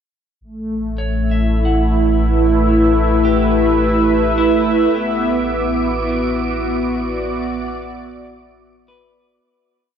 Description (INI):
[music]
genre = ambient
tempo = 53 BPM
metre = 4/4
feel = straight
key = A mixolydian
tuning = A4 = 440 Hz
[part]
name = warm analog pad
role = sustained chords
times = 0.4-9.5 s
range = A3 to E5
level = -16 LUFS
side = equal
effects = wide subtle chorus
[part]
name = warm sub bass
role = bass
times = 0.4-9.4 s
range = A1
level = -21 LUFS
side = equal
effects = none
[part]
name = clean electric guitar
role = arpeggios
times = 1.0-10.0 s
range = E4 to F#5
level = -28 LUFS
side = right 2 dB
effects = tape echo
[part]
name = wind-like tuned noise texture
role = texture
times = 5.2-9.5 s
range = D6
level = -30 LUFS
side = right 6 dB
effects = built-in reverb
[sound]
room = moderate huge ambient reverb, RT60 7.6 s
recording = none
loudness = -14 LUFS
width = side -8 dB against mid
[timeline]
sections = 0.4-9.5 A section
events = fade-in on clean electric guitar 0.4-9.5; fade-out on sub bass 0.4-9.5; fade-out 4.9-9.5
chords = 0.4 A7; 4.9 Bm/A